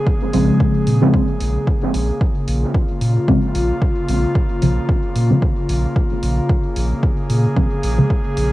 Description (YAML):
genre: dub techno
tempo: 112 BPM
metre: 4/4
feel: swing 55% on 16ths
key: Bb minor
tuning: A4 = 440 Hz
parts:
  - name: airy breathy pad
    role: sustained chords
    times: 0.0-8.5 s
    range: Db3 to Ab4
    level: -22 LUFS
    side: equal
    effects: chorus, sidechain pumping, cassette tape
  - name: electronic kick drum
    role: drums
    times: 0.1-8.2 s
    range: none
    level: -18 LUFS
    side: equal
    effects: overdrive, cassette tape
  - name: deep mellow chord stab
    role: stabs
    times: 0.3-8.1 s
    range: Db3 to C4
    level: -18 LUFS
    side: equal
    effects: chorus, phaser, sidechain pumping, cassette tape, dub echo
  - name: warm sub bass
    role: bass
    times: 0.3-8.5 s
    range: Bb1 to Bb2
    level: -18 LUFS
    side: equal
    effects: sidechain pumping
  - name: electronic hi-hat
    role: drums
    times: 0.3-8.5 s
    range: none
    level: -35 LUFS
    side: equal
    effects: overdrive, cassette tape
room: little or no reverb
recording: home recording on cassette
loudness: -15 LUFS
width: side -16 dB against mid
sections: 0.0-8.5 A section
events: filter sweep on synth stab 0.0-8.5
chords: 0.0 Bbm7